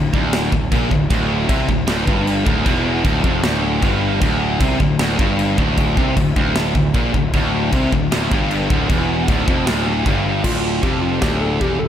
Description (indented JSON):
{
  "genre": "heavy metal",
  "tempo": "154 BPM",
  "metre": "4/4",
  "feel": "straight",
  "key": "D minor",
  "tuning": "A4 = 440 Hz",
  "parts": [
    { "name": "heavy high-gain guitar", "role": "riff", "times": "0.0-11.9 s", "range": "D2 to C3", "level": "-21 LUFS", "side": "left 8 dB", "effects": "distortion, slapback echo" },
    { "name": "high-gain distorted guitar", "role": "riff", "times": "0.0-11.9 s", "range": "D2 to C3", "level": "-21 LUFS", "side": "right 8 dB", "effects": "distortion" },
    { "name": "fuzz picked electric bass", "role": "bass", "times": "0.0-11.9 s", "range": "D1 to C2", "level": "-22 LUFS", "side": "equal", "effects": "overdrive" },
    { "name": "modern studio drum kit", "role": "drums", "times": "0.1-11.7 s", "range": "china cymbal, crash cymbal, kick drum, snare drum", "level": "-20 LUFS", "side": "equal", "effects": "none" },
    { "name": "soft struck synth lead", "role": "melody", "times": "10.4-11.9 s", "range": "F4 to A4", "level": "-24 LUFS", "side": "left 2 dB", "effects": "chorus, slapback echo" }
  ],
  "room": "light reverb, small room ambience",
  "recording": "none",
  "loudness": "-15 LUFS",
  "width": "side -10 dB against mid",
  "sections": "0.0-10.4 A section; 10.4-11.9 B section",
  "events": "soft synth lead solo 10.4-11.9",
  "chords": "0.0 N.C.; 10.4 Dm",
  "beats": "0.32 0.71 | 1.10 1.49 1.88 2.27 | 2.66 3.05 3.44 3.83 | 4.22 4.61 5.00 5.38 | 5.78 6.17 6.55 6.94 | 7.33 7.72 8.11 8.50 | 8.89 9.28 9.67 10.06 | 10.45 10.83 11.22 11.61"
}